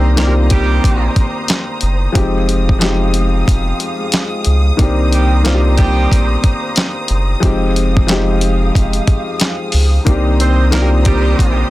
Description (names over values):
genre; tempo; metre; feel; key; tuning
hip hop, boom-bap hip-hop; 91 BPM; 4/4; swing 62% on 16ths; C minor; A4 = 440 Hz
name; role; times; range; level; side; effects
warm upright piano; accompaniment; 0.0-11.7 s; Eb3 to G4; -18 LUFS; left 2 dB; none
dark studio string section; sustained chords; 0.0-11.7 s; Ab3 to Eb6; -24 LUFS; right 1 dB; none
mellow horn section; stabs; 0.0-1.1, 5.1-6.4, 10.4-11.7 s; F3 to C5; -21 LUFS; right 4 dB; digital delay
round analog bass; bass; 0.0-11.6 s; F1 to Db2; -14 LUFS; equal; none
dusty soul sampler-style drum kit; drums; 0.2-11.6 s; handclaps, hi-hat, kick drum, snare drum; -14 LUFS; equal; none
room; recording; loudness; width
little or no reverb; dense, heavily limited modern master; -11 LUFS; side -17 dB against mid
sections
0.0-11.7 A section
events
none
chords
0.0 Cm7; 2.2 Fm7; 4.8 Cm7; 7.4 Fm7; 10.1 Cm7